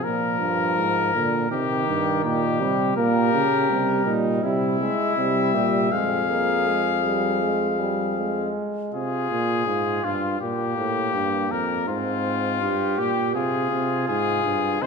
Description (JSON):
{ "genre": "classical, imitative canzona for brass ensemble", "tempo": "81 BPM", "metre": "4/4", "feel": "straight", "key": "F minor", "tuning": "A4 = 440 Hz", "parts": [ { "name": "clear trumpet", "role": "melody", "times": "0.0-14.9 s", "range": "F4 to F5", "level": "-24 LUFS", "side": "left 7 dB", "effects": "none" }, { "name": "warm trombone", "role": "accompaniment", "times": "0.0-8.9, 14.8-14.9 s", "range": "D3 to Bb3", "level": "-26 LUFS", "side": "right 2 dB", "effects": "none" }, { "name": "mellow euphonium", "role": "bass", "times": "0.0-14.9 s", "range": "F2 to Db3", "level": "-26 LUFS", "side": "right 2 dB", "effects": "none" }, { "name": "warm flugelhorn", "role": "second line", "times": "3.0-14.9 s", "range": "Bb3 to Ab4", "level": "-28 LUFS", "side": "right 4 dB", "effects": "none" } ], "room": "wet recital hall reverb, RT60 1.7 s", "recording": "minimal, uncompressed stereo recording", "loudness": "-20 LUFS", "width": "side -5 dB against mid", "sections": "0.0-8.9 A section; 8.9-14.9 B section", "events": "none", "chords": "0.0 Bb; 1.5 Cm; 3.0 Gdim/Bb; 4.4 C; 5.9 Fm; 10.4 Gm9; 11.9 Fm/Ab; 13.4 Fm/C" }